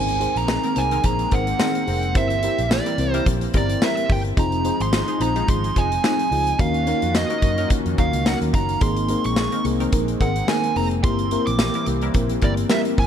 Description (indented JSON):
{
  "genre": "1980s-style pop",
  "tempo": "108 BPM",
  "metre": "4/4",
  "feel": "swing 55% on 16ths",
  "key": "unclear",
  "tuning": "A4 = 440 Hz",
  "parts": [
    { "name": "fuzz lead guitar", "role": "melody", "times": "0.0-13.1 s", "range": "D5 to D6", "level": "-25 LUFS", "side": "right 4 dB", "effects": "distortion, ping-pong delay" },
    { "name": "FM electric piano with soft pad layer", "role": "accompaniment", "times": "0.0-13.1 s", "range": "Bb3 to C5", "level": "-24 LUFS", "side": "left 2 dB", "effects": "chorus, tremolo" },
    { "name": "warm analog pad", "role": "sustained chords", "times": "0.0-13.1 s", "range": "Eb3 to Gb4", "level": "-31 LUFS", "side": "left 1 dB", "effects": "chorus, tremolo" },
    { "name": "vintage muted fingered electric bass", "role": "bass", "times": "0.0-13.1 s", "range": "F1 to Gb2", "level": "-25 LUFS", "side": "equal", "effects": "none" },
    { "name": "big rock drum kit", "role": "drums", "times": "0.1-13.1 s", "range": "hi-hat, kick drum, snare drum, tambourine", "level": "-23 LUFS", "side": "equal", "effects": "none" },
    { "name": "funky polysynth comp", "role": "stabs", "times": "0.6-12.9 s", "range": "Eb3 to Bb4", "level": "-31 LUFS", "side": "equal", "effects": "chorus, ping-pong delay" }
  ],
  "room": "light reverb, small room ambience",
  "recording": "dark, warm production",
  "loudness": "-18 LUFS",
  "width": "side -8 dB against mid",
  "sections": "0.0-13.1 A section",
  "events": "none",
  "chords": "0.0 Abadd9; 2.1 C7/G; 4.4 Fm7; 6.6 Ebm7; 8.8 Abadd9; 11.0 C7/G",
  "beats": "0.48 1.04 1.59 | 2.15 2.71 3.26 3.82 | 4.37 4.93 5.48 6.04 | 6.59 7.15 7.71 8.26 | 8.82 9.37 9.93 10.48 | 11.04 11.59 12.15 12.71"
}